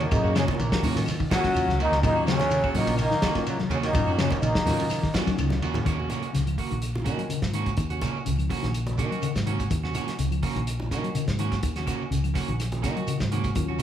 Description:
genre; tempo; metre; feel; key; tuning
afrobeat; 125 BPM; 4/4; swing 53% on 16ths; Eb minor; A4 = 440 Hz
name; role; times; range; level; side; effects
trombone with plunger mute; melody; 0.0-5.2 s; Bb3 to Gb4; -27 LUFS; equal; none
mellow trumpet; second line; 0.0-5.2 s; Gb3 to Db4; -36 LUFS; right 3 dB; none
raspy baritone saxophone; second line; 0.0-5.2 s; Bb2 to Gb3; -36 LUFS; left 4 dB; none
mellow electric guitar; arpeggios; 0.0-13.7 s; Db3 to Gb3; -32 LUFS; left 6 dB; none
electric guitar at the edge of break-up; stabs; 0.0-13.8 s; Bb3 to Gb4; -33 LUFS; right 6 dB; spring reverb
fingered electric bass; bass; 0.0-13.8 s; Bb1 to Eb3; -29 LUFS; equal; none
warm soul drum kit; drums; 0.0-13.8 s; hi-hat, kick drum, ride cymbal, snare drum; -30 LUFS; equal; none
shekere; percussion; 0.0-13.8 s; none; -37 LUFS; right 3 dB; none
mellow tonewheel organ; accompaniment; 0.1-5.5, 13.5-13.8 s; Gb3 to Ab4; -33 LUFS; left 3 dB; slow rotary speaker
claves; percussion; 0.1-13.7 s; none; -44 LUFS; left 7 dB; none
congas; percussion; 0.1-13.8 s; none; -33 LUFS; right 1 dB; none
room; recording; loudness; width
moderate large studio reverb, RT60 0.8 s; band playing live in one room; -23 LUFS; side -10 dB against mid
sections
0.0-5.9 A section; 5.9-13.8 B section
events
drum fill 5.4-5.9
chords
0.0 Ebm7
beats
| 0.12 0.59 1.07 1.55 | 2.03 2.51 2.98 3.46 | 3.94 4.42 4.90 5.38 | 5.86 6.34 6.82 7.30 | 7.78 8.26 8.74 9.23 | 9.71 10.19 10.67 11.15 | 11.63 12.12 12.60 13.08 | 13.56

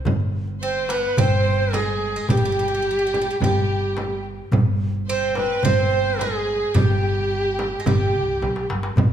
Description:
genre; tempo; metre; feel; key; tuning
Turkish makam ensemble; 108 BPM; 4/4; straight; unclear; A4 = 440 Hz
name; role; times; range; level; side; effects
upright bass; bass; 0.1-9.1 s; G1 to C2; -24 LUFS; equal; none
darbuka; percussion; 0.1-9.1 s; none; -27 LUFS; left 2 dB; none
frame drum; percussion; 0.1-9.1 s; none; -25 LUFS; right 3 dB; none
bright reedy ney; melody; 0.6-8.7 s; G4 to C5; -23 LUFS; right 1 dB; none
Greek bouzouki; second line; 0.6-8.7 s; G3 to C4; -30 LUFS; right 3 dB; none
rich studio violin section; second line; 0.6-8.7 s; G4 to C5; -30 LUFS; equal; none
room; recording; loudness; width
moderate scoring stage reverb, RT60 1.9 s; small room ambience; -19 LUFS; side -9 dB against mid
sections
0.1-9.1 A section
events
drum fill 8.4-9.0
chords
none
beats
| 0.07 0.63 1.18 1.74 | 2.30 2.85 3.41 3.97 | 4.52 5.08 5.64 6.19 | 6.75 7.31 7.87 8.42 | 8.98

